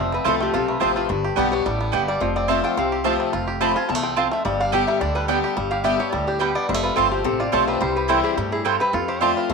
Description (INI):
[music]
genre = bluegrass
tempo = 214 BPM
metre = 4/4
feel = straight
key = G mixolydian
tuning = A4 = 440 Hz
[part]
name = bluegrass banjo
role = melody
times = 0.0-9.5 s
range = F3 to G4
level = -26 LUFS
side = right 4 dB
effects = none
[part]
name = lap resonator guitar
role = melody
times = 0.0-9.5 s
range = G4 to B5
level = -26 LUFS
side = left 1 dB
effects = none
[part]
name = picked swing-style acoustic guitar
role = accompaniment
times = 0.0-9.5 s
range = E2 to G4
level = -24 LUFS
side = left 10 dB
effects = none
[part]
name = upright bass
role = bass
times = 0.0-9.5 s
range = F1 to G2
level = -29 LUFS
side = right 2 dB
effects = none
[part]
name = mandolin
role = stabs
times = 0.2-9.3 s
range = B3 to A5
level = -24 LUFS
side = right 10 dB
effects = none
[sound]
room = wet spring reverb, RT60 1.2 s, small room ambience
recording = 1960s-style stereo with parts hard left and right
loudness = -19 LUFS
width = side -4 dB against mid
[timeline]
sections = 0.0-5.6 A section; 5.6-9.5 B section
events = resonator guitar played with a steel bar solo 5.6-9.5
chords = 0.0 F; 1.1 G; 2.2 F; 4.5 G; 6.7 F; 7.8 C; 8.9 F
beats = 0.25 0.53 0.81 | 1.09 1.37 1.65 1.93 | 2.21 2.49 2.77 3.05 | 3.33 3.61 3.89 4.17 | 4.45 4.73 5.01 5.29 | 5.57 5.85 6.13 6.41 | 6.69 6.97 7.25 7.54 | 7.82 8.10 8.38 8.66 | 8.94 9.22 9.50